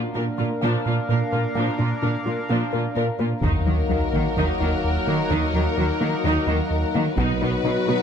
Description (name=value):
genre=cinematic, hybrid orchestral and electronic film score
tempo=128 BPM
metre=4/4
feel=straight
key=Eb minor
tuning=A4 = 439 Hz
part: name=sweeping resonant pad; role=sustained chords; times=0.0-8.0 s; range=Bb3 to Gb5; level=-29 LUFS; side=equal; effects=chorus
part: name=woody wave-folded pluck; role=arpeggios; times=0.0-8.0 s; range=Eb3 to Bb4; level=-31 LUFS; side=left 5 dB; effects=chorus, ping-pong delay
part: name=smooth gliding synth bass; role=riff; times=0.0-8.0 s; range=Eb2 to B3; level=-26 LUFS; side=right 2 dB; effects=none
part: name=rich symphonic viola section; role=accompaniment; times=0.1-8.0 s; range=F3 to Bb4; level=-29 LUFS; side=right 1 dB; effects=none
part: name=rich symphonic cello section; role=bass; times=0.2-8.0 s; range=Bb2 to Eb3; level=-28 LUFS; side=right 2 dB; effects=none
part: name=warm symphonic violin section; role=melody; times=3.4-8.0 s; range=Bb4 to B4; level=-29 LUFS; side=left 5 dB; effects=none
part: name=warm French horn section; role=sustained chords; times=3.4-8.0 s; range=F#3 to Eb4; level=-28 LUFS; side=left 5 dB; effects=none
part: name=rich symphonic double bass section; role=bass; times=3.4-7.4 s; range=B1 to Eb2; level=-29 LUFS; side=right 4 dB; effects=none
part: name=taiko ensemble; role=drums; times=3.4-4.3, 7.2-8.0 s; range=none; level=-29 LUFS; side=left 1 dB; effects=none
part: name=sub drop and riser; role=sound effects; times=3.4-8.0 s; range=none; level=-29 LUFS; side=left 1 dB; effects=none
room=light reverb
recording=close, detailed microphones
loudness=-20 LUFS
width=side -7 dB against mid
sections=0.0-3.4 A section; 3.4-8.0 B section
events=impact 3.4-5.3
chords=0.0 Bb; 3.4 Ebm; 7.2 B